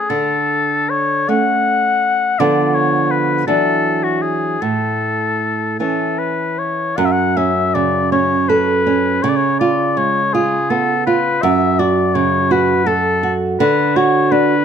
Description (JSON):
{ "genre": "romantic duo for oboe and classical guitar", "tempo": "48-56 BPM (dotted quarters)", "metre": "6/8", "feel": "rubato", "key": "A major, F# minor from 7.0 s", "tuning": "A4 = 438 Hz", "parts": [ { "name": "warm oboe", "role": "melody", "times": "0.0-14.6 s", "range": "F#4 to F#5", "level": "-17 LUFS", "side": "left 5 dB", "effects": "none" }, { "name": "nylon-string guitar", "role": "accompaniment", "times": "0.0-14.6 s", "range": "F#2 to A4", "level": "-16 LUFS", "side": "right 3 dB", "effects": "none" } ], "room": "moderate recital hall reverb, RT60 1.4 s", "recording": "close, detailed microphones", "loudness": "-14 LUFS", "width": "side -8 dB against mid", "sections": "0.0-7.0 A section; 7.0-14.6 B section", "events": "none", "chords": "0.1 Dmaj7; 2.4 Bdim/D; 3.5 Esus2; 4.6 A; 7.0 F#m; 9.2 C#7; 11.4 F#m; 13.6 D" }